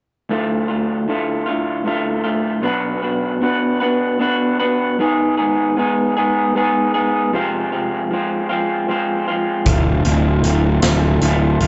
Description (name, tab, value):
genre	quiet-loud alternative rock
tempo	51 BPM (dotted quarters)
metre	6/8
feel	straight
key	unclear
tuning	A4 = 440 Hz
part	electric guitar through a small old amp	arpeggios	0.3-11.7 s	D2 to B4	-19 LUFS	equal	harmonic tremolo
part	fuzz picked electric bass	bass	9.7-11.7 s	D1	-18 LUFS	equal	overdrive
part	big rock drum kit	drums	9.7-11.7 s	hi-hat, kick drum, snare drum	-23 LUFS	equal	none
room	light reverb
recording	band playing live in one room, nothing above 7.9 kHz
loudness	-18 LUFS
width	mono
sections	0.3-11.7 A section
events	none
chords	0.3 Dm; 2.6 Bm; 5.0 G#m; 7.3 Fm; 9.7 Dm